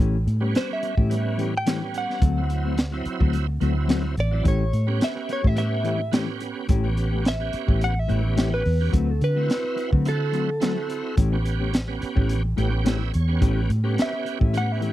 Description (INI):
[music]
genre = straight-eighth soul blues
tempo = 107 BPM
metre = 4/4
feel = swing 54% on 16ths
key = A mixolydian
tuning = A4 = 435 Hz
[part]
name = mellow electric guitar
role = stabs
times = 0.0-14.9 s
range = E3 to G4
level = -30 LUFS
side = left 6 dB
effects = spring reverb
[part]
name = vintage muted fingered electric bass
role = bass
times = 0.0-14.9 s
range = A1 to D3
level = -24 LUFS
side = equal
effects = none
[part]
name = crunchy breakbeat drum kit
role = drums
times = 0.3-14.9 s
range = hi-hat, kick drum, snare drum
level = -22 LUFS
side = equal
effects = none
[part]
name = bright tonewheel organ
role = accompaniment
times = 0.4-14.9 s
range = F#3 to G5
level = -31 LUFS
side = right 6 dB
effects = overdrive, chorus vibrato, slow rotary speaker
[part]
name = direct-recorded clean electric guitar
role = melody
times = 0.6-14.9 s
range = A4 to G5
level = -28 LUFS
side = equal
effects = analog chorus
[sound]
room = little or no reverb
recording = dry, close 1970s-style studio recording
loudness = -21 LUFS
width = side -14 dB against mid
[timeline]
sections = 0.0-14.9 A section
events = tonewheel organ fill 12.3-13.4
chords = 0.0 A7; 2.2 D7; 4.5 A7; 8.9 D7; 11.2 A7